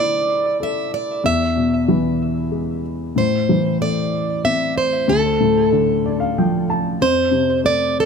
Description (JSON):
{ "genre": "acoustic folk-pop ballad", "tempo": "94 BPM", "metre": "3/4", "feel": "straight", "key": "A minor", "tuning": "A4 = 440 Hz", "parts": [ { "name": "picked plugged-in steel-string acoustic guitar", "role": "melody", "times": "0.0-8.1 s", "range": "A4 to E5", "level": "-19 LUFS", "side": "right 3 dB", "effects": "tape echo" }, { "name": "dark baby grand piano", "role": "accompaniment", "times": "0.0-8.1 s", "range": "D2 to A5", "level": "-19 LUFS", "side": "left 3 dB", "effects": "none" } ], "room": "moderate studio reverb, RT60 0.6 s", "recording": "none", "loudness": "-16 LUFS", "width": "side -6 dB against mid", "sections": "0.0-8.1 A section", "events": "none", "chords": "0.0 Dsus2; 1.2 E; 3.2 Am; 5.1 Dm; 7.0 F", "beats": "0.60 | 1.24 1.87 2.52 | 3.16 3.80 4.44 | 5.08 5.72 6.35 | 6.99 7.62" }